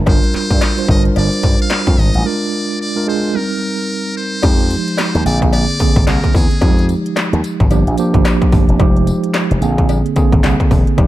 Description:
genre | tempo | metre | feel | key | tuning
R&B, new jack swing | 110 BPM | 4/4 | swing 61% on 16ths | unclear | A4 = 441 Hz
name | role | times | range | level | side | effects
mellow tine electric piano | accompaniment | 0.0-11.1 s | D3 to C5 | -17 LUFS | right 3 dB | medium stereo tremolo
slap bass with an envelope filter | bass | 0.0-11.1 s | E1 to G2 | -16 LUFS | equal | none
trumpet with metal mute | melody | 0.1-6.9 s | Ab4 to F5 | -22 LUFS | left 1 dB | ping-pong delay
industrial drum kit | drums | 0.1-11.1 s | crash cymbal, handclaps, hi-hat, kick drum, snare drum, tambourine | -14 LUFS | equal | distortion
cowbell | percussion | 0.1-11.1 s | none | -28 LUFS | left 8 dB | none
room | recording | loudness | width
little or no reverb | dark, warm production | -12 LUFS | side -15 dB against mid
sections
0.0-4.4 A section; 4.4-11.1 B section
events
break 2.3-4.4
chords
0.1 Gm7; 2.3 Bb7; 3.3 Eb6; 4.4 Fm9; 5.3 Bb9; 6.6 Fm9; 7.7 Gm7; 8.8 Fm9; 9.6 Bb9

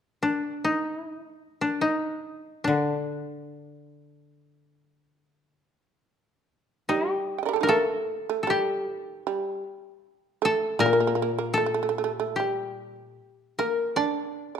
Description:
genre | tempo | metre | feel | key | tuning
japanese traditional | 60-79 BPM | 2/4 | rubato | D miyako bushi | A4 = 440 Hz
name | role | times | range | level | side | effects
koto | melody | 0.2-14.6 s | D4 to D5 | -26 LUFS | left 2 dB | none
koto | accompaniment | 2.7-5.6, 10.8-13.2 s | Bb2 to D3 | -29 LUFS | left 3 dB | none
shamisen | second line | 6.9-14.6 s | G3 to G5 | -28 LUFS | right 7 dB | none
room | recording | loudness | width
moderate recital hall reverb, RT60 1.5 s | dark, warm production | -24 LUFS | side -8 dB against mid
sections
0.0-6.9 A section; 6.9-14.6 B section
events
none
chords
none

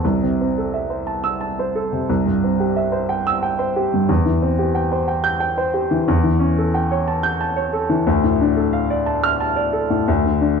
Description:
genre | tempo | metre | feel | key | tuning
classical, romantic character piece for solo piano | 90 BPM | 3/4 | rubato | D minor from 6.1 s | A4 = 438 Hz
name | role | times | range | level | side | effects
warm baby grand piano | solo | 0.0-10.6 s | C2 to G6 | -17 LUFS | equal | none
room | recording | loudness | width
moderate large studio reverb, RT60 0.9 s | dark, warm production | -17 LUFS | side -6 dB against mid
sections
0.0-10.6 A section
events
none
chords
0.0 Am/C; 2.1 C; 4.1 C/E; 6.1 A7/E; 8.1 Dm; 10.1 N.C.

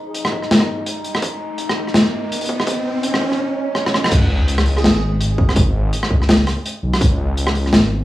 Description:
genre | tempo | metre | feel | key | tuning
half-time drum and bass | 166 BPM | 4/4 | swing 58% on 16ths, half-time | unclear | A4 = 441 Hz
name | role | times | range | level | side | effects
riser, swell and sub drop | sound effects | 0.3-5.6 s | none | -24 LUFS | equal | none
metallic inharmonic drone | texture | 0.0-3.4 s | D#4 | -27 LUFS | equal | chorus, built-in reverb
crunchy breakbeat drum kit | drums | 0.1-7.8 s | crash cymbal, hi-hat, rim click, snare drum | -18 LUFS | equal | none
electronic kick drum | drums | 0.3-7.1 s | none | -18 LUFS | equal | high-pass filter on kick, high-pass filter on room
dark detuned saw bass | bass | 4.1-8.0 s | G#1 to C#2 | -18 LUFS | equal | none
airy dreamy lead | melody | 4.8-5.0 s | G#4 | -31 LUFS | right 4 dB | chorus, vintage 12-bit sampler grit, analog delay
room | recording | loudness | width
light reverb, studio reverb | dry, gritty hardware recording, transformer saturation, small room ambience | -15 LUFS | side -15 dB against mid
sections
0.0-4.1 A section; 4.1-8.0 B section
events
build-up 0.0-4.1; riser 0.3-3.4; swell 3.4-4.1; drum fill 3.8-4.1; drop 4.1-8.0; impact 4.1-5.6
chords
0.0 N.C.; 4.1 C#5

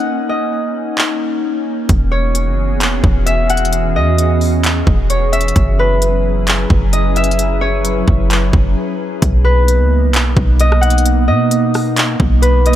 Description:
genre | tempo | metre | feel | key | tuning
hip hop, atmospheric cloud-rap | 131 BPM | 4/4 | half-time | B major | A4 = 440 Hz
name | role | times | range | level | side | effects
Celtic harp | melody | 0.0-12.8 s | B4 to F#5 | -19 LUFS | equal | digital delay
glassy FM pad | sustained chords | 0.0-12.8 s | E3 to B4 | -19 LUFS | equal | ensemble chorus, built-in reverb, sidechain pumping
trap drum kit | drums | 1.0-12.8 s | handclaps, hi-hat, kick drum, rim click | -16 LUFS | equal | none
clean 808-style bass | bass | 1.9-12.8 s | E1 to B2 | -14 LUFS | equal | none
room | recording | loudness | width
digital ambience | none | -12 LUFS | side -12 dB against mid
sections
0.0-9.2 A section; 9.2-12.8 B section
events
break 0.0-1.9, 8.8-9.2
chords
0.0 Bmaj7; 1.9 E69; 5.6 F#7sus4; 9.2 Bmaj7

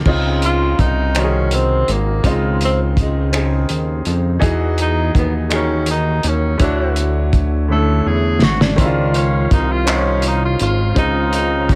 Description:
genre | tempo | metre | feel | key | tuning
slow six-eight R&B | 55 BPM (dotted quarters) | 6/8 | straight | Db major | A4 = 440 Hz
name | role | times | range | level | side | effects
clear baby grand piano | accompaniment | 0.0-11.8 s | Db3 to C#5 | -23 LUFS | equal | none
fat analog bass | bass | 0.0-11.8 s | Ab1 to F2 | -20 LUFS | equal | none
cloth-damped thuddy drum kit | drums | 0.1-11.8 s | crash cymbal, finger snaps, handclaps, hi-hat, kick drum, snare drum | -20 LUFS | equal | none
breathy tenor saxophone | melody | 0.5-11.8 s | Ab3 to A4 | -24 LUFS | equal | none
tonewheel organ | sustained chords | 8.8-11.8 s | F4 to C6 | -32 LUFS | equal | none
room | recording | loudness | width
studio reverb | none | -16 LUFS | mono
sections
0.1-11.8 A section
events
tenor saxophone solo 0.1-11.8; drum fill 7.7-8.8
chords
0.1 Dbmaj9; 4.4 Emaj9; 6.6 Dmaj9; 8.8 Dbmaj9

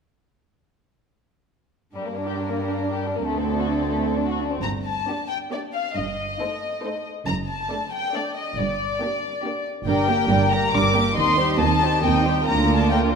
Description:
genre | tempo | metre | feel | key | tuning
quick classical-period movement for string orchestra | 138 BPM | 3/4 | rubato | G minor | A4 = 436 Hz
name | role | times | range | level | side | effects
warm symphonic violin section | melody | 2.0-13.0 s | A4 to D6 | -25 LUFS | left 4 dB | none
clear studio violin section | second line | 2.0-13.2 s | G3 to Eb5 | -28 LUFS | left 3 dB | none
dark symphonic viola section | accompaniment | 2.0-13.2 s | Eb3 to Eb4 | -27 LUFS | right 2 dB | none
warm symphonic cello section | bass | 2.0-13.2 s | D2 to G2 | -27 LUFS | right 4 dB | none
warm symphonic double bass section | bass | 4.6-13.2 s | F#1 to Eb2 | -26 LUFS | right 4 dB | none
room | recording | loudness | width
wet concert hall reverb, RT60 2.0 s | minimal, uncompressed stereo recording | -20 LUFS | side -6 dB against mid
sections
2.0-4.6 A section; 4.6-13.2 B section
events
none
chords
2.0 Gm; 3.3 D7(no3); 4.6 Gm; 6.0 Am7b5/G; 7.3 D/F#; 8.6 Gm; 11.2 Cm/Eb; 12.5 Bb/D

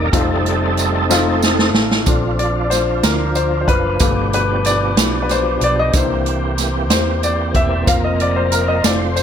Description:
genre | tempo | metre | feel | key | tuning
slow gospel | 62 BPM (dotted quarters) | 6/8 | straight | Bb major | A4 = 440 Hz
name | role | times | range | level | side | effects
clear grand piano | accompaniment | 0.0-9.2 s | C3 to F5 | -19 LUFS | left 4 dB | none
overdriven tonewheel organ | sustained chords | 0.0-9.2 s | B2 to C5 | -21 LUFS | right 2 dB | slow rotary speaker, chorus vibrato
hollow-body short-scale fingered electric bass | bass | 0.0-9.2 s | E1 to E2 | -21 LUFS | equal | none
swinging big-band drum kit | drums | 0.1-9.2 s | hi-hat, kick drum, snare drum | -18 LUFS | right 1 dB | none
tambourine | percussion | 0.1-9.2 s | none | -25 LUFS | right 11 dB | none
room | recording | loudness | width
light reverb, studio reverb | none | -14 LUFS | side -8 dB against mid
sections
0.0-2.1 A section; 2.1-9.2 B section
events
tonewheel organ solo 0.0-2.1; drum fill 1.1-2.1; grand piano solo 2.1-9.2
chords
0.1 F7; 2.1 Bbmaj7; 4.0 G7; 5.9 C7; 7.9 Fsus4

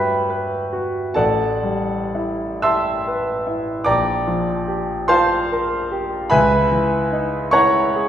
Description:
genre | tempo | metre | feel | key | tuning
classical, impressionist solo piano | 38-50 BPM (dotted quarters) | 6/8 | rubato | unclear | A4 = 440 Hz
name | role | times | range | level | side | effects
clear concert grand piano | solo | 0.0-8.1 s | A1 to E6 | -17 LUFS | equal | none
room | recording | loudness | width
wet recital hall reverb, RT60 1.6 s | recorded in a church or concert hall | -17 LUFS | side -10 dB against mid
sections
0.0-8.1 A section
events
none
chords
0.0 Gmaj7; 1.2 Am9; 3.9 Bb69; 6.3 C#m9

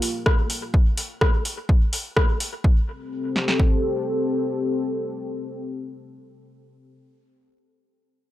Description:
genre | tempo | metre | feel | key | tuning
dub techno | 126 BPM | 4/4 | straight | A phrygian | A4 = 440 Hz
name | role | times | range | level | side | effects
dark analog pad | sustained chords | 0.0-7.0 s | Bb3 to A4 | -26 LUFS | left 2 dB | chorus, sidechain pumping
deep house drum kit | drums | 0.0-2.5 s | hi-hat, rim click | -24 LUFS | left 1 dB | overdrive, dub echo
punchy analog drum machine | drums | 0.3-3.7 s | kick drum, snare drum | -19 LUFS | equal | none
room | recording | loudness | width
little or no reverb | dry, gritty hardware recording | -20 LUFS | side -14 dB against mid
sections
0.0-2.6 A section; 2.6-6.5 B section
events
none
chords
0.0 Gm7; 2.6 Am7

